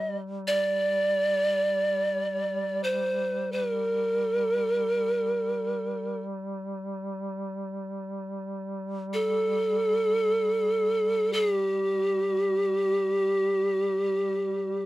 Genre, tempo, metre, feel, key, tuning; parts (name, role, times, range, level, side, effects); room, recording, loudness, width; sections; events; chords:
caucasian folk, Caucasian lament; free time; G minor; A4 = 437 Hz
breathy bright pan flute; melody; 0.0-14.9 s; G4 to Eb5; -24 LUFS; right 1 dB
mellow duduk; drone; 0.0-14.9 s; G3; -35 LUFS; left 1 dB
light reverb; dry, close 1970s-style studio recording; -25 LUFS; side -17 dB against mid
0.0-14.9 A section